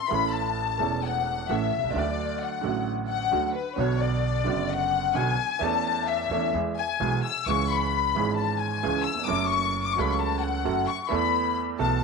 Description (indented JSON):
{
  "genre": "tango",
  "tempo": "131 BPM",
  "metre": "4/4",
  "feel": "rubato",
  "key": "A major",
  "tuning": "A4 = 444 Hz",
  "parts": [
    { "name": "warm studio violin section", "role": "second line", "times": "0.0-12.0 s", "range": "B4 to E6", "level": "-26 LUFS", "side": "left 10 dB", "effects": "none" },
    { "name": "warm baby grand piano", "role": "accompaniment", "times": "0.1-12.0 s", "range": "E1 to A4", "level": "-28 LUFS", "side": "right 10 dB", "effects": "none" },
    { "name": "upright bass", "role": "bass", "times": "0.1-12.0 s", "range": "E1 to E2", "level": "-32 LUFS", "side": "right 1 dB", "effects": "none" }
  ],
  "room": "wet spring reverb, RT60 1.3 s, studio reverb",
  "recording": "1960s-style stereo with parts hard left and right",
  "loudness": "-24 LUFS",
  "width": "side -4 dB against mid",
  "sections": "0.1-12.0 A section",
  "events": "violin section solo 0.1-12.0",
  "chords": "0.1 A; 1.9 D; 3.8 Bm; 5.6 A/E; 6.5 E; 7.5 C#m; 9.3 F#m; 11.1 Esus4"
}